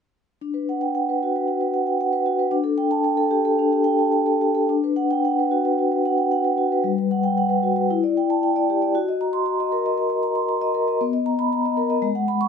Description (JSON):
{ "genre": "classical, contemporary piece for solo vibraphone", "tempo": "113 BPM", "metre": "4/4", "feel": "uneven beats, rubato", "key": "D major", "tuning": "A4 = 440 Hz", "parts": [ { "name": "vibraphone with soft mallets", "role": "solo", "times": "0.4-12.5 s", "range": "G3 to C#6", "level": "-19 LUFS", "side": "equal", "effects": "none" } ], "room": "little or no reverb", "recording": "close, detailed microphones", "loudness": "-19 LUFS", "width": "side -6 dB against mid", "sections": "0.4-4.7 A section; 4.7-12.5 B section", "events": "none", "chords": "0.4 D6; 2.5 A7sus4/D; 4.7 D6; 6.8 Gmaj7; 7.9 Em7; 9.0 F#6; 11.0 Bmaj7", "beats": "| 0.41 0.95 1.49 2.02 | 2.54 3.06 3.60 4.14 | 4.71 5.25 5.79 6.32 | 6.85 7.38 7.91 8.44 | 8.95 9.47 9.98 10.49 | 11.01 11.52 12.03" }